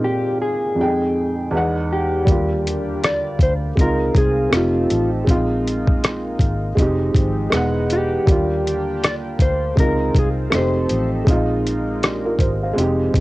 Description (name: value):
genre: lo-fi hip hop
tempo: 80 BPM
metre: 4/4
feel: swing 60% on 16ths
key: Eb major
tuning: A4 = 437 Hz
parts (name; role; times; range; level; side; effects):
- mellow electric guitar; melody; 0.0-11.1 s; F4 to D5; -22 LUFS; left 1 dB; low-pass filter, cassette tape, analog delay
- dark upright piano; accompaniment; 0.0-13.2 s; E2 to G5; -21 LUFS; right 1 dB; cassette tape
- lush unison pad; sustained chords; 2.6-13.2 s; C3 to A4; -30 LUFS; equal; chorus, cassette tape
- vintage muted fingered electric bass; bass; 2.3-13.2 s; E1 to Eb2; -23 LUFS; equal; none
- dusty soul sampler-style drum kit; drums; 2.3-13.2 s; hi-hat, kick drum, rim click; -17 LUFS; equal; vintage 12-bit sampler grit, cassette tape
room: light reverb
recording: home recording on cassette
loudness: -16 LUFS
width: side -19 dB against mid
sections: 0.0-2.3 A section; 2.3-13.2 B section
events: none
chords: 0.0 Bb7sus4; 0.8 Fm7; 1.5 Emaj7; 2.3 Ebmaj7; 3.8 Dbmaj7; 4.5 F7; 5.3 Bb7sus4; 6.8 Fm7; 7.5 Emaj7; 8.3 Ebmaj7; 9.8 Dbmaj7; 10.5 F7; 11.3 Bb7sus4